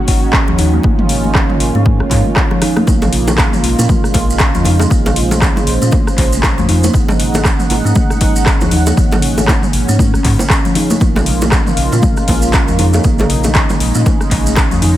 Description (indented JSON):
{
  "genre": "afro house",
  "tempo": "118 BPM",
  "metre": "4/4",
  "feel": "swing 58% on 16ths",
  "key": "Bb minor",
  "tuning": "A4 = 440 Hz",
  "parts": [
    { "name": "warm analog pad", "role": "sustained chords", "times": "0.0-15.0 s", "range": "Db3 to Gb5", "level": "-20 LUFS", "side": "right 1 dB", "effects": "chorus, sidechain pumping" },
    { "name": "round analog bass", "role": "bass", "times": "0.1-15.0 s", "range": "Gb1 to Bb2", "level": "-16 LUFS", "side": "equal", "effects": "sidechain pumping" },
    { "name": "deep house drum kit", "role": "drums", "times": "0.1-14.9 s", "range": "handclaps, hi-hat, rim click, toms", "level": "-18 LUFS", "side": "equal", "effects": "overdrive" },
    { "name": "electronic kick drum", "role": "drums", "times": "0.1-14.7 s", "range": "none", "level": "-14 LUFS", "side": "equal", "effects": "overdrive" },
    { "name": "congas", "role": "percussion", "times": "0.1-14.9 s", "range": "none", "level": "-23 LUFS", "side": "left 4 dB", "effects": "none" },
    { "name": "kalimba", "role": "arpeggios", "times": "0.3-15.0 s", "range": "F3 to Eb4", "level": "-18 LUFS", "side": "right 2 dB", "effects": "sidechain pumping, tape echo" },
    { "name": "bongos", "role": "percussion", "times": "2.9-14.7 s", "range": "none", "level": "-22 LUFS", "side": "right 1 dB", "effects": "none" },
    { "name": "maracas", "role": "percussion", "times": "2.9-14.8 s", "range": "none", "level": "-26 LUFS", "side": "right 3 dB", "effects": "none" }
  ],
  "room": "small room ambience",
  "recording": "none",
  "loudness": "-10 LUFS",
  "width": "side -13 dB against mid",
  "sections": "0.0-15.0 A section",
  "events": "drum fill 2.5-2.9",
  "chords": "0.0 Ab7sus4; 2.9 Bbm7; 6.9 Ab7sus4; 11.0 Bbm7"
}